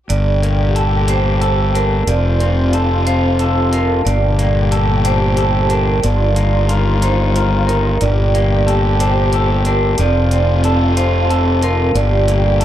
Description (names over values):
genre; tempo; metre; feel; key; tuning
post-rock; 61 BPM (dotted quarters); 6/8; straight; G minor; A4 = 441 Hz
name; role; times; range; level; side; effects
dark studio string section; sustained chords; 0.1-12.6 s; Bb2 to G4; -22 LUFS; left 3 dB; none
electric guitar through a small old amp; arpeggios; 0.1-12.6 s; G2 to Bb4; -21 LUFS; left 1 dB; spring reverb, tape echo
vibraphone with medium hard mallets; arpeggios; 0.1-12.6 s; Bb4 to D5; -21 LUFS; right 4 dB; tape echo
fuzz fingered electric bass; bass; 0.1-12.6 s; F1 to G1; -15 LUFS; equal; overdrive
electronic hi-hat; drums; 0.1-12.6 s; none; -28 LUFS; right 3 dB; none
room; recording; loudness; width
small room reverb; dark, warm production; -12 LUFS; side -11 dB against mid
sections
0.1-12.6 A section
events
none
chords
0.1 Gmadd9; 2.1 F; 4.1 Gmadd9; 6.0 Ebadd9/G; 8.0 Gmadd9; 10.0 F; 12.0 Gm